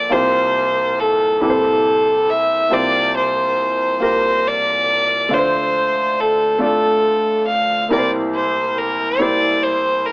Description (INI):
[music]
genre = gospel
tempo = 46 BPM (dotted quarters)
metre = 6/8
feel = straight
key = unclear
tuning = A4 = 436 Hz
[part]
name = clear violin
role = melody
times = 0.0-10.1 s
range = A4 to F5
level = -16 LUFS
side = equal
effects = none
[part]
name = warm concert grand piano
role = accompaniment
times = 0.0-10.1 s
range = C2 to D5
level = -20 LUFS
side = equal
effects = none
[sound]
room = moderate echo chamber reverb, RT60 1.4 s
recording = AM radio sound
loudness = -14 LUFS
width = side -30 dB against mid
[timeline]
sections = 0.0-10.1 A section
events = none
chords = 0.1 C7sus4; 1.4 C7; 2.7 C7sus4; 5.3 Dm7; 7.9 C7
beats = | 0.10 1.41 | 2.71 4.00 | 5.30 6.60 | 7.90 9.20